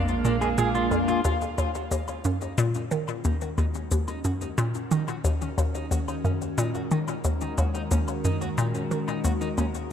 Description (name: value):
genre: ambient, sequencer-driven space music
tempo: 90 BPM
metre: 4/4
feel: straight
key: Eb minor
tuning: A4 = 440 Hz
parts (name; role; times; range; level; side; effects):
- evolving wavetable pad; sustained chords; 0.0-9.9 s; Eb3 to Bb4; -32 LUFS; equal; chorus, built-in reverb, phaser, shimmer reverb
- hollow square pluck; riff; 0.0-9.9 s; Eb2 to Eb3; -26 LUFS; left 1 dB; chorus, ping-pong delay
- warm sub bass; bass; 0.0-1.2 s; Bb1; -33 LUFS; equal; none
- pulsing gated texture; texture; 0.0-1.3 s; F5; -38 LUFS; right 2 dB; chorus, built-in reverb, shimmer reverb
- shaker and woodblock; percussion; 0.1-9.9 s; none; -39 LUFS; left 3 dB; ping-pong delay
- clean electric guitar; arpeggios; 0.2-9.6 s; Bb3 to Ab4; -33 LUFS; moving between left 2 dB and right 4 dB; auto-pan, ping-pong delay, shimmer reverb
room: moderate plate reverb, RT60 2.6 s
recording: none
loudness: -24 LUFS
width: side -8 dB against mid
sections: 0.0-1.2 A section; 1.2-9.9 B section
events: fade-in on clean electric guitar 1.2-9.9; fade-in on ambient pad 1.2-9.9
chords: 0.0 Bb7; 1.2 Ebm7